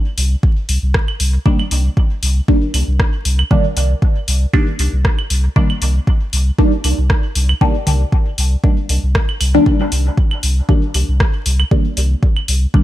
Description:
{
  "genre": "dub techno",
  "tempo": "117 BPM",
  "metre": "4/4",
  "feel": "swing 54% on 16ths",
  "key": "C minor",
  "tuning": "A4 = 440 Hz",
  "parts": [
    { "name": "warm sub bass", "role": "bass", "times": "0.2-12.7 s", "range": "C2", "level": "-15 LUFS", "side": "equal", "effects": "sidechain pumping" },
    { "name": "deep house drum kit", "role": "drums", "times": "0.2-12.6 s", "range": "hi-hat, rim click", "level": "-21 LUFS", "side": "left 1 dB", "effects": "overdrive" },
    { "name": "electronic kick drum", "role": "drums", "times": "0.4-12.8 s", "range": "none", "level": "-14 LUFS", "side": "equal", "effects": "overdrive" },
    { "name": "electronic claves and toms", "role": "percussion", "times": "1.1-12.5 s", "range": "none", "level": "-24 LUFS", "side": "right 2 dB", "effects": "sidechain pumping on perc, sidechain pumping on toms, dub echo" },
    { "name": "filtered dub chord stab", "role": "stabs", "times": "1.5-12.8 s", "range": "Eb3 to D4", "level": "-19 LUFS", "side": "equal", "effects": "phaser, sidechain pumping, dub echo" }
  ],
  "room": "little or no reverb",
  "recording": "vinyl crackle",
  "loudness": "-13 LUFS",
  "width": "side -14 dB against mid",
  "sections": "0.0-9.7 A section; 9.7-12.8 A section",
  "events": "none",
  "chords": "0.0 Cm7"
}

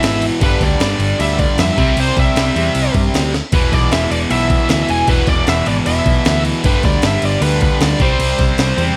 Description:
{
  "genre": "hard rock",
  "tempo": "154 BPM",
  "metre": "4/4",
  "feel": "straight",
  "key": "unclear",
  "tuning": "A4 = 440 Hz",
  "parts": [
    { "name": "high-gain lead guitar", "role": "melody", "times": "0.0-9.0 s", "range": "B4 to G#5", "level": "-22 LUFS", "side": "equal", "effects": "distortion, tape echo" },
    { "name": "distorted electric guitar", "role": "riff", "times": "0.0-9.0 s", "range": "E2 to C4", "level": "-24 LUFS", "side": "equal", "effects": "overdrive" },
    { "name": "overdriven electric guitar", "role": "riff", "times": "0.0-9.0 s", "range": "E2 to C4", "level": "-23 LUFS", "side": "equal", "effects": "phaser" },
    { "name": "hollow-body short-scale picked electric bass", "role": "bass", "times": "0.0-8.9 s", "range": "E1 to G2", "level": "-21 LUFS", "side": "equal", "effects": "none" },
    { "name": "breakbeat sampler-style drum kit", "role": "drums", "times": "0.0-8.9 s", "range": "crash cymbal, kick drum, snare drum", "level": "-20 LUFS", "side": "equal", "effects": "none" }
  ],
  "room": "little or no reverb",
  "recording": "none",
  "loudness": "-15 LUFS",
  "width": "mono",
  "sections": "0.0-9.0 A section",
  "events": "drum fill 3.3",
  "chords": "0.4 G5; 1.8 C; 3.5 E5; 6.6 G5; 8.0 C"
}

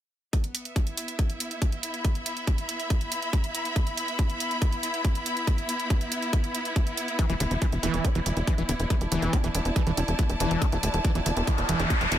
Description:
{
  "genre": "psychedelic trance",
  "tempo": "140 BPM",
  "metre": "4/4",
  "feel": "straight",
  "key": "unclear",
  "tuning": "A4 = 440 Hz",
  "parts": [
    { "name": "electronic hi-hat", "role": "drums", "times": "0.3-12.2 s", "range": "none", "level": "-34 LUFS", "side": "right 3 dB", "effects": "overdrive" },
    { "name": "electronic kick drum", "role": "drums", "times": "0.3-12.0 s", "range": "none", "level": "-25 LUFS", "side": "equal", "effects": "none" },
    { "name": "clear studio string section", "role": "texture", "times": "0.3-12.2 s", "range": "B3 to B5", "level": "-31 LUFS", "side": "equal", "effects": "sidechain pumping" },
    { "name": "screaming distorted acid line", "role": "riff", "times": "7.2-12.1 s", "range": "D3 to E4", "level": "-31 LUFS", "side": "moving between left 7 dB and right 7 dB", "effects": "distortion, chorus, auto-pan, vintage 12-bit sampler grit, sidechain pumping, dub echo" },
    { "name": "tight sequencer bass", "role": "bass", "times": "7.3-12.2 s", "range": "D1 to E1", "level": "-27 LUFS", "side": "equal", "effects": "none" },
    { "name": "riser", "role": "sound effects", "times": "11.1-12.2 s", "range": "none", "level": "-29 LUFS", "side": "equal", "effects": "none" }
  ],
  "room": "little or no reverb",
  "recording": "none",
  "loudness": "-24 LUFS",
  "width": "side -11 dB against mid",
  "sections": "0.3-12.2 A section",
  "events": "riser 11.1-12.2",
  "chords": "0.3 E5"
}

